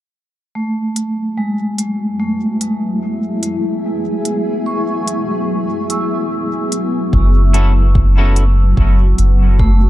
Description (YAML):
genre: ambient dub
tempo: 73 BPM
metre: 4/4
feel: swing 56% on 16ths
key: F# minor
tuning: A4 = 441 Hz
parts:
  - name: granular cloud pad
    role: sustained chords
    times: 1.4-9.9 s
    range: F#3 to G#4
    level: -21 LUFS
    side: left 1 dB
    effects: built-in reverb
  - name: vibraphone with medium mallets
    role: arpeggios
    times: 0.6-9.9 s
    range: G#3 to E6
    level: -20 LUFS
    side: equal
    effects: low-pass filter, dub echo
  - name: electronic hi-hat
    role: drums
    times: 1.0-9.4 s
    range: none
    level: -22 LUFS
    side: equal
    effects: none
  - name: soft dub sub bass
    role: bass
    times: 7.1-9.9 s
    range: F#1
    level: -11 LUFS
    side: equal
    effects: none
  - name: electronic kick drum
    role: drums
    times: 7.1-9.8 s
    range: none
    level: -15 LUFS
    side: equal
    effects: overdrive
  - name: semi-hollow electric guitar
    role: stabs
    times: 7.5-8.4 s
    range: C#4 to A4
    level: -24 LUFS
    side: left 2 dB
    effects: wide subtle chorus, dub echo
room: digital ambience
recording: none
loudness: -13 LUFS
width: side -15 dB against mid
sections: 0.6-9.9 A section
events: none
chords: 0.6 F#m7